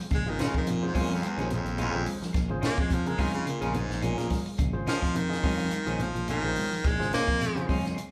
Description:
afrobeat; 107 BPM; 4/4; swing 55% on 16ths; Bb minor; A4 = 441 Hz
semi-hollow electric guitar; stabs; 0.0-8.0 s; Ab3 to F4; -40 LUFS; equal; tape echo
shekere; percussion; 0.0-8.1 s; -41 LUFS; equal
edgy baritone saxophone; melody; 0.1-7.7 s; Eb2 to Bb3; -34 LUFS; equal
clean electric guitar; arpeggios; 0.1-8.0 s; Db3 to F3; -40 LUFS; equal
fingered electric bass; bass; 0.1-7.9 s; Ab1 to F2; -35 LUFS; equal
compact cocktail drum kit; drums; 0.1-8.1 s; hi-hat, kick drum, snare drum; -33 LUFS; equal
claves; percussion; 0.1-8.1 s; -52 LUFS; equal
barky tine electric piano; accompaniment; 0.3-7.8 s; Db4 to Eb5; -40 LUFS; equal
congas; percussion; 0.3-7.8 s; -40 LUFS; equal
wet large studio reverb, RT60 0.9 s; band playing live in one room; -28 LUFS; mono
0.0-8.1 A section
baritone saxophone solo 0.0-8.1
0.0 Bbm7

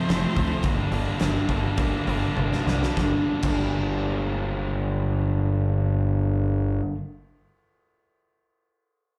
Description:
quiet-loud alternative rock; 97-111 BPM; 4/4; straight; G minor; A4 = 437 Hz
octave-fuzz lead guitar; melody; 0.0-0.6 s; C5; -38 LUFS; equal; distortion, slapback echo, analog delay
mellow electric guitar; arpeggios; 0.0-7.0 s; G2 to D4; -32 LUFS; equal; lush chorus
crunchy overdriven guitar; riff; 0.0-7.0 s; F2 to D4; -29 LUFS; equal
gritty driven synth bass; bass; 0.1-6.8 s; F1 to D2; -28 LUFS; equal
huge arena drum kit; drums; 0.1-3.6 s; crash cymbal, hi-hat, kick drum, snare drum, toms; -31 LUFS; equal
light reverb; live gig heard through the venue's PA, club reverb; -24 LUFS; mono
0.0-3.0 A section; 3.0-7.9 B section
slowing down 0.0-3.0; drum fill 2.4-3.0
0.0 F; 0.6 Gm

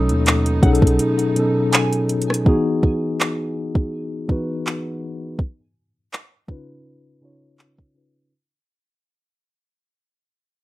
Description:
contemporary R&B; 82 BPM; 4/4; swing 54% on 16ths; E major; A4 = 440 Hz
glassy synth bell; melody; 0.0-1.7 s; D#6; -39 LUFS; equal
mellow tine electric piano; accompaniment; 0.0-8.3 s; B2 to C#5; -20 LUFS; left 1 dB; slow stereo tremolo, low-pass filter
rich studio string section; sustained chords; 0.0-2.4 s; A3 to D#4; -32 LUFS; right 2 dB; sidechain pumping
long sustained 808-style bass; bass; 0.0-1.0 s; B1 to D#2; -19 LUFS; equal
smooth R&B drum kit; drums; 0.1-7.9 s; handclaps, hi-hat, kick drum, rim click; -18 LUFS; equal; overdrive
glassy wavetable pluck; texture; 0.6-2.5 s; F#5 to G#5; -31 LUFS; right 3 dB; chorus, tape echo
moderate studio reverb, RT60 0.6 s; rough home demo mix; -17 LUFS; side -16 dB against mid
0.0-2.5 A section; 2.5-8.3 B section
break 1.0-2.5; fade-out 2.5-8.3; filter sweep on tine electric piano 2.5-8.3
0.0 B9; 2.5 Emaj7; 5.4 C#7

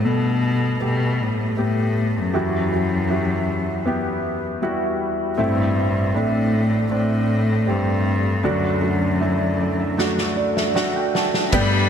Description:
pop ballad; 78 BPM; 4/4; straight; A4 = 440 Hz
rich cello; melody; 0.0-11.9 s; F#2 to G3; -21 LUFS; left 1 dB; digital delay
warm concert grand piano; accompaniment; 0.0-11.9 s; G1 to A5; -22 LUFS; right 1 dB; analog chorus
loose indie drum kit; drums; 10.0-11.7 s; crash cymbal, kick drum, snare drum; -23 LUFS; equal; gated reverb
warm studio violin section; second line; 11.5-11.9 s; B4 to B5; -24 LUFS; left 3 dB
shimmering ambient pad; sustained chords; 11.5-11.9 s; barely audible
picked steel-string acoustic guitar; arpeggios; 11.5-11.9 s; G3 to A4; -27 LUFS; left 8 dB
dark symphonic cello section; bass; 11.5-11.9 s; G2; -21 LUFS; equal
moderate lush hall reverb, RT60 2.6 s; bright 1980s-style digital production; -18 LUFS; side -8 dB against mid
0.0-11.5 A section
grand piano fill 9.2-11.5; drum fill 10.0-11.5
0.0 Gadd9; 2.3 Emadd9; 5.4 Am; 8.4 D

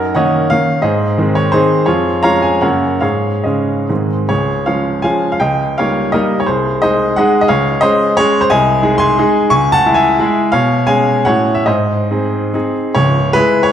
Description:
classical, romantic triple-time dance for piano with dotted rhythms; 130-198 BPM; 3/4; rubato; Db major, C# minor from 8.5 s; A4 = 440 Hz
clear baby grand piano; solo; 0.0-13.7 s; C#1 to C#6; -11 LUFS; equal
moderate concert hall reverb, RT60 1.8 s; -11 LUFS; side -9 dB against mid
0.0-4.3 A section; 4.3-13.0 B section
0.0 Ebm7/Gb; 0.8 Ab; 1.9 Db/F; 2.6 Gb; 3.0 Absus4; 3.9 Ab; 4.3 Db; 5.4 Eb7/Db; 6.5 Ab/C; 7.5 Db; 8.5 G#/B#; 9.5 C#m; 10.5 C#7/B; 11.3 F#m/A; 11.7 G#; 13.0 C#m

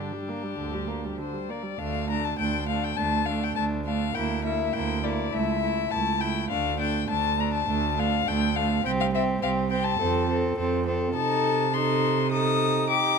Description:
quick classical-period movement for string quartet; 102 BPM; 4/4; straight; D minor; A4 = 440 Hz
rich violin; melody; 0.0-13.2 s; G4 to Eb6; -28 LUFS; left 9 dB
rich violin; second line; 0.0-13.2 s; D4 to A4; -31 LUFS; left 5 dB
warm viola; accompaniment; 0.0-13.2 s; D3 to Eb4; -30 LUFS; right 4 dB
rich cello; bass; 0.6-13.2 s; C2 to C3; -29 LUFS; right 7 dB
moderate recital hall reverb, RT60 1.5 s; close, detailed microphones; -24 LUFS; side -5 dB against mid
0.0-1.8 A section; 1.8-13.2 B section
0.0 Gm; 1.8 D5; 4.2 Gm6/D; 5.3 A/C#; 6.5 D5; 8.8 C5; 10.0 F; 11.2 Adim/C

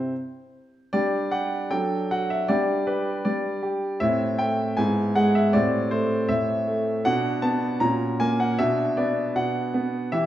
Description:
classical-period piano sonatina; 78 BPM; 2/4; rubato; A4 = 440 Hz
clear grand piano; solo; 0.0-10.3 s; G#2 to A#5; -21 LUFS; equal
wet recital hall reverb, RT60 1.5 s; -21 LUFS; side -12 dB against mid
0.9-10.3 A section
0.0 C; 0.9 G5; 1.7 D/F#; 2.5 G5; 4.0 Am; 4.8 E/G#; 5.5 Am7; 7.1 Bm; 7.8 F#/A#; 8.6 Bm

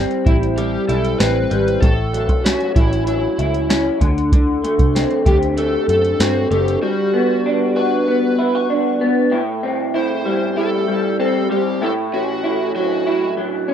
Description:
indie pop, bedroom pop; 96 BPM; 4/4; straight; A4 = 441 Hz
electric guitar through a small old amp; accompaniment; 0.0-13.7 s; A2 to G4; -17 LUFS; equal; analog chorus, warbly pitch drift
vintage muted picked electric bass; bass; 0.0-6.8 s; F#1 to G2; -21 LUFS; equal
soft vintage rhythm box; drums; 0.1-6.8 s; hi-hat, kick drum, snare drum; -17 LUFS; equal
overdriven slide guitar; melody; 0.3-13.3 s; E4 to C5; -24 LUFS; equal; analog chorus, tape echo
wet small room reverb, RT60 0.6 s; rough home demo mix; -15 LUFS; side -9 dB against mid
0.0-9.3 A section; 9.3-13.7 B section
0.0 Am7; 1.8 F#m7/A; 4.0 D7sus4; 6.8 Gmaj7; 9.3 Am7; 11.8 F#m7/A

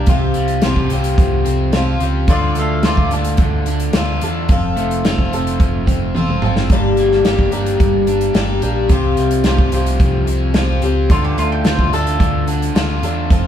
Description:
folk rock and heartland rock; 109 BPM; 4/4; straight; A4 = 440 Hz
picked twelve-string acoustic guitar; accompaniment; 0.0-13.5 s; G2 to A4; -20 LUFS; left 4 dB
crunchy overdriven guitar; riff; 0.0-13.5 s; F2 to G4; -21 LUFS; right 1 dB
picked electric bass; bass; 0.0-13.5 s; F1 to E2; -19 LUFS; right 1 dB
loose indie drum kit; drums; 0.1-13.4 s; hi-hat, kick drum, snare drum, toms; -17 LUFS; equal
bowl-back mandolin; second line; 2.3-3.1, 11.1-12.5 s; F4 to F5; -22 LUFS; left 1 dB
moderate small room reverb, RT60 0.5 s; band playing live in one room; -13 LUFS; side -10 dB against mid
0.0-13.5 A section
drum fill 6.2-6.7
0.1 Csus4; 2.3 Dm; 4.5 F; 6.7 Gm; 8.9 Csus4; 11.1 Dm

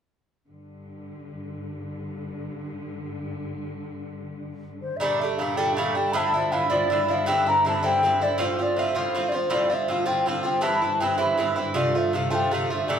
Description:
celtic folk; 107 BPM (dotted quarters); 6/8; straight; A4 = 441 Hz
rich studio string section; drone; 0.5-13.0 s; G2 to D3; -33 LUFS; left 1 dB
mellow hollow wooden flute; melody; 4.8-13.0 s; C5 to B5; -24 LUFS; left 2 dB
Irish bouzouki; accompaniment; 5.0-13.0 s; G2 to G4; -24 LUFS; right 3 dB
moderate large studio reverb, RT60 1.3 s; band playing live in one room; -21 LUFS; side -8 dB against mid
0.5-5.0 A section; 5.0-13.0 B section
0.5 G5; 5.0 Gmadd9; 6.1 Dmadd9; 7.3 Cadd9; 8.4 F; 10.6 C; 11.8 F

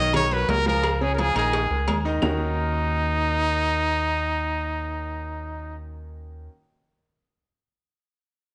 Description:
latin, salsa; 172 BPM; 4/4; straight; Eb minor; A4 = 438 Hz
bright trumpet; melody; 0.0-5.8 s; Eb4 to Eb5; -27 LUFS; equal
bright concert grand piano; accompaniment; 0.0-6.5 s; Db3 to Eb5; -34 LUFS; equal
deep dub fingered electric bass; bass; 0.0-6.5 s; Bb1 to Eb2; -30 LUFS; equal
agogo bells and timbales; percussion; 0.1-2.3 s; -34 LUFS; equal
claves; percussion; 0.1-2.3 s; -41 LUFS; equal
congas; percussion; 0.1-2.3 s; -34 LUFS; equal
cowbell and bongos; percussion; 0.1-2.3 s; -35 LUFS; equal
moderate echo chamber reverb, RT60 1.4 s, studio reverb; nothing above 10.4 kHz; -24 LUFS; mono
0.0-2.2 A section; 2.2-5.0 B section
0.1 Bmaj7; 0.8 Db; 1.5 Bb7sus4; 2.2 Ebm7

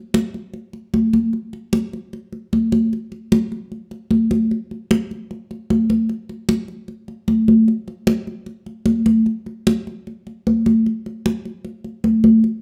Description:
latin; 151 BPM; 4/4; straight
congas; percussion; 0.1-12.6 s; -19 LUFS; equal
moderate large studio reverb, RT60 0.9 s; -19 LUFS; mono
0.0-12.6 A section

